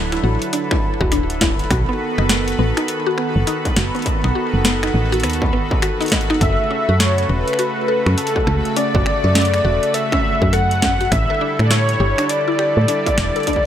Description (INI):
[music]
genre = IDM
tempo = 102 BPM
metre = 4/4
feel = swing 62% on 16ths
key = unclear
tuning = A4 = 440 Hz
[part]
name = warm analog pad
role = sustained chords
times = 0.0-13.7 s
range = C#3 to A4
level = -24 LUFS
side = right 1 dB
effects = chorus
[part]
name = woody FM bass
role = bass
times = 0.0-13.3 s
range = D1 to A2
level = -18 LUFS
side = equal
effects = none
[part]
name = bubbling stepped-filter texture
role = texture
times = 0.0-13.7 s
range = B4 to B5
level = -30 LUFS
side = equal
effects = chorus, built-in reverb
[part]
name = mallet-like synth pluck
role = arpeggios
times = 0.1-13.6 s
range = B3 to D#5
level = -24 LUFS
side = left 3 dB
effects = phaser, analog chorus, cassette tape, ping-pong delay
[part]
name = booming analog drum machine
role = drums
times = 0.1-13.6 s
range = finger snaps, hi-hat, snare drum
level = -22 LUFS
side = equal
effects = ping-pong delay
[part]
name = electronic kick drum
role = drums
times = 0.7-13.6 s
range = none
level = -21 LUFS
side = equal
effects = distortion
[part]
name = warm velvety synth lead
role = melody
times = 6.4-13.7 s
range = A4 to F#5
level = -19 LUFS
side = equal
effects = chorus, ping-pong delay
[sound]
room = light reverb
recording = none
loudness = -15 LUFS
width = side -10 dB against mid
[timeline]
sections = 0.0-13.7 A section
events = none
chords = 0.0 Dadd9; 1.7 B7; 6.4 F#m; 11.1 A7sus4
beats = 0.53 1.12 | 1.71 2.29 2.88 3.47 | 4.06 4.65 5.24 5.82 | 6.41 7.00 7.59 8.18 | 8.77 9.35 9.94 10.53 | 11.12 11.71 12.29 12.88 | 13.47